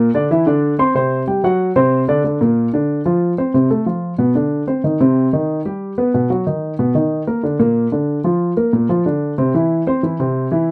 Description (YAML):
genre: latin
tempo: 185 BPM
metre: 4/4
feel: straight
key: unclear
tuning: A4 = 440 Hz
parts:
  - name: dark baby grand piano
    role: solo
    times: 0.0-10.7 s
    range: Bb2 to C6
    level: -17 LUFS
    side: equal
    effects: none
room: light reverb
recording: dry, close 1970s-style studio recording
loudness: -17 LUFS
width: mono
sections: 0.0-2.2 A section; 2.2-10.7 B section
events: none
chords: 0.3 Cadd9/D; 1.0 C5; 1.6 D7; 2.2 Bbadd9; 3.5 F/C; 4.2 Bm; 4.8 Cm; 6.1 B; 7.4 Bb; 9.4 C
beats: 0.30 0.63 | 0.95 1.27 1.60 1.92 | 2.25 2.57 2.89 3.22 | 3.54 3.87 4.19 4.52 | 4.84 5.17 5.49 5.81 | 6.14 6.46 6.79 7.11 | 7.44 7.76 8.09 8.41 | 8.73 9.06 9.38 9.71 | 10.03 10.36 10.68